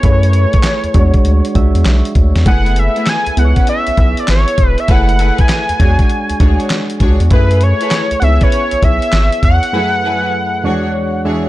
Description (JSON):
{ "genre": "R&B, new jack swing", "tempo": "99 BPM", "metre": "4/4", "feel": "swing 65% on 16ths", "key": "F# minor", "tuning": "A4 = 441 Hz", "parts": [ { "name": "wide unison lead", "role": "melody", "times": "0.0-11.2 s", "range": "B4 to G#5", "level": "-17 LUFS", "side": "equal", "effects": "digital delay" }, { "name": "soft electric-piano-like synth keys", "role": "accompaniment", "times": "0.0-11.5 s", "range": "E2 to E5", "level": "-19 LUFS", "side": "right 2 dB", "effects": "chorus" }, { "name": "round analog bass", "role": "bass", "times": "0.0-9.6 s", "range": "E1 to F#2", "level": "-12 LUFS", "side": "equal", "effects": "none" }, { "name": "dusty soul sampler-style drum kit", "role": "drums", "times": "0.0-9.7 s", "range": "handclaps, hi-hat, kick drum, snare drum", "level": "-14 LUFS", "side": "equal", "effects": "none" }, { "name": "warm symphonic string section", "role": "stabs", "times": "2.5-11.5 s", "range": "E3 to C#5", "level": "-23 LUFS", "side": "left 3 dB", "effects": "digital delay" } ], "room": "digital ambience", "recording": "dark, warm production", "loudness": "-10 LUFS", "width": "side -16 dB against mid", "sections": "0.0-11.5 A section", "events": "break 9.7-11.5; synth keys fill 10.9-11.5", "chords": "0.0 F#m11; 0.9 E13; 2.5 F#m11; 3.4 C#m7; 4.9 F#m11; 5.8 E13; 7.3 F#m11; 8.2 C#m7; 9.7 F#m11; 10.6 E13", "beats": "| 0.04 0.64 1.25 1.85 | 2.46 3.07 3.67 4.28 | 4.89 5.49 6.10 6.70 | 7.31 7.92 8.52 9.13 | 9.73 10.34 10.95" }